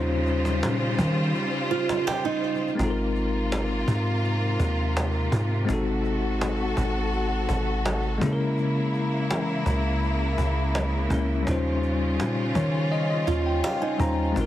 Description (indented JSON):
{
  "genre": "contemporary R&B",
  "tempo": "83 BPM",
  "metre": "4/4",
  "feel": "straight",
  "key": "Ab major",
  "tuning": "A4 = 440 Hz",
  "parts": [
    { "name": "bell-like tine electric piano", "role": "accompaniment", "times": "0.0-14.5 s", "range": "G3 to Bb5", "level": "-28 LUFS", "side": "left 3 dB", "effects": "fast stereo tremolo" },
    { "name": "clear studio string section", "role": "sustained chords", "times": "0.0-14.5 s", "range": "C3 to C5", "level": "-30 LUFS", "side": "equal", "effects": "none" },
    { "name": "soft 808-style bass", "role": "bass", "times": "0.0-14.5 s", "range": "Ab1 to Fb3", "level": "-26 LUFS", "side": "equal", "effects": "none" },
    { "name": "cajon", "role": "drums", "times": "0.3-14.5 s", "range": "none", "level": "-32 LUFS", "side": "equal", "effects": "none" },
    { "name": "nylon-string guitar", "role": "arpeggios", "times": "1.7-2.8, 13.3-14.3 s", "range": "Eb4 to G4", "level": "-27 LUFS", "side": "right 7 dB", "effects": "none" }
  ],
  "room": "light reverb",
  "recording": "heavily compressed radio sound",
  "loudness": "-23 LUFS",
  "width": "side -13 dB against mid",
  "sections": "0.0-2.8 A section; 2.8-14.5 B section",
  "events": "kick muted 1.3-2.8; tine electric piano fill 12.2-14.4",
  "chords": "0.0 Eb13; 2.8 Ab69; 5.7 Ab7b9; 8.2 Dbm6; 11.5 Eb13"
}